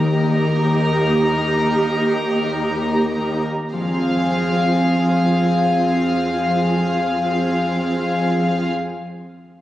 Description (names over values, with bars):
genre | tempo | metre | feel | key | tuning
cinematic, emotional film score for orchestra | 50 BPM | 4/4 | rubato | F minor | A4 = 441 Hz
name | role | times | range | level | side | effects
warm studio violin section | second line | 0.0-8.7 s | Ab4 to Bb5 | -22 LUFS | left 2 dB | none
dark symphonic viola section | accompaniment | 0.0-8.7 s | C4 to G4 | -22 LUFS | right 2 dB | none
concert harp | arpeggios | 0.0-9.0 s | Eb3 to F5 | -25 LUFS | left 2 dB | none
dark studio cello section | bass | 0.0-8.7 s | Eb2 to F2 | -22 LUFS | equal | none
room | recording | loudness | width
wet scoring stage reverb, RT60 2.0 s | recorded on a phone in the room, studio reverb, compression | -16 LUFS | side -13 dB against mid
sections
0.0-3.7 A section; 3.7-8.5 B section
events
slowing down 0.0-3.7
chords
0.0 Eb; 3.7 Fm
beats
0.26 1.35 2.51 | 3.73 4.93 6.13 7.33